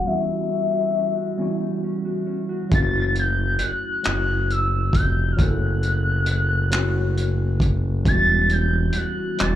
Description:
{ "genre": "slow six-eight R&B", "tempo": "45 BPM (dotted quarters)", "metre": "6/8", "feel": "straight", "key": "unclear", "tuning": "A4 = 437 Hz", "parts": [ { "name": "gliding portamento lead", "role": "melody", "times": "0.0-9.6 s", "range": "E5 to A6", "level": "-24 LUFS", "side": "left 2 dB", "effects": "chorus, slapback echo" }, { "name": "mellow electric guitar", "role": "second line", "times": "0.0-3.3, 8.1-9.6 s", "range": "E3 to F#4", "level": "-29 LUFS", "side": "right 5 dB", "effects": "slapback echo" }, { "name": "tine electric piano", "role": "accompaniment", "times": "0.0-9.6 s", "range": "F#3 to A4", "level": "-28 LUFS", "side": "left 1 dB", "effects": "medium stereo tremolo, slapback echo" }, { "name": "smooth synth bass", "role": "bass", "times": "2.7-9.6 s", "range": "E1 to F#1", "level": "-21 LUFS", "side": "equal", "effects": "none" }, { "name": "cloth-damped thuddy drum kit", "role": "drums", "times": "2.7-9.6 s", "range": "handclaps, hi-hat, kick drum", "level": "-23 LUFS", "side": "equal", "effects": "none" } ], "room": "little or no reverb", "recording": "live gig heard through the venue's PA, club reverb, low-pass filter", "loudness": "-19 LUFS", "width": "side -12 dB against mid", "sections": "0.0-2.7 A section; 2.7-9.6 B section", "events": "filter sweep 0.0-2.7; break 0.1-2.7", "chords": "0.0 Em69; 2.7 F#m7; 8.1 Em69" }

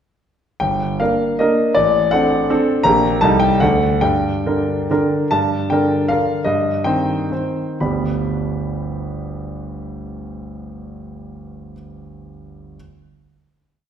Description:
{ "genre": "classical, romantic triple-time dance for piano with dotted rhythms", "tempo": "112-175 BPM", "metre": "3/4", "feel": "rubato", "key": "unclear", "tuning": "A4 = 440 Hz", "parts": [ { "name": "warm concert grand piano", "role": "solo", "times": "0.6-12.8 s", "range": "G1 to B5", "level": "-16 LUFS", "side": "equal", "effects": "none" } ], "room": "wet recital hall reverb, RT60 1.4 s", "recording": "recorded in a church or concert hall", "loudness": "-15 LUFS", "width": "side -8 dB against mid", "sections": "0.6-5.3 A section; 5.3-7.8 coda; 7.8-10.6 final chord", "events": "slowing down 4.7-7.8", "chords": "0.6 Gm; 1.8 D7/A; 2.9 Gm/Bb; 3.2 Am7b5/C; 3.6 D; 4.0 Gm; 6.5 Cm/G; 7.8 G" }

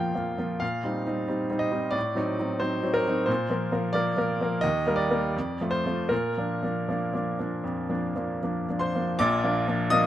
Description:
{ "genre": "classical, romantic character piece for solo piano", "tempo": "76-91 BPM", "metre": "4/4", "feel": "rubato", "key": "Bb major", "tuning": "A4 = 439 Hz", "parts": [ { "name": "clear baby grand piano", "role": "solo", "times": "0.0-10.1 s", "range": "Bb1 to Eb6", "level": "-24 LUFS", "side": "equal", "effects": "none" } ], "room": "light reverb", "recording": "close, detailed microphones", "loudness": "-25 LUFS", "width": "side -12 dB against mid", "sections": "0.0-9.2 A section", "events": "none", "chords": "0.0 Bb; 0.6 Cm7/Bb; 2.0 Adim7; 3.3 Bb; 4.6 Eb; 5.4 F; 6.1 Bb" }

